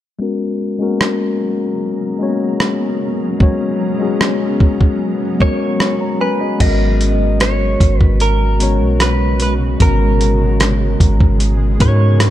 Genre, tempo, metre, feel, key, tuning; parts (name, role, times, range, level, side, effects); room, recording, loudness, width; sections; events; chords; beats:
contemporary R&B; 75 BPM; 4/4; straight; G# minor; A4 = 437 Hz
mellow tine electric piano; accompaniment; 0.2-12.3 s; G#3 to A#5; -18 LUFS; left 3 dB; low-pass filter
granular cloud pad; sustained chords; 1.3-12.3 s; B2 to A#5; -24 LUFS; right 2 dB; built-in reverb, low-pass filter
dusty soul sampler-style drum kit; drums; 1.0-12.3 s; crash cymbal, hi-hat, kick drum, rim click; -14 LUFS; equal
direct-recorded clean electric guitar; melody; 5.4-12.3 s; A#4 to D#5; -21 LUFS; right 2 dB; wide subtle chorus, tape echo
warm 808-style bass; bass; 6.6-12.3 s; G#1 to G#2; -14 LUFS; equal
little or no reverb; dark, warm production; -13 LUFS; side -12 dB against mid
0.2-6.6 A section; 6.6-12.3 B section
filter sweep 0.2-6.6
0.2 G#m11
| 0.20 1.00 1.80 2.60 | 3.40 4.20 5.00 5.80 | 6.60 7.40 8.20 9.00 | 9.80 10.60 11.40 12.20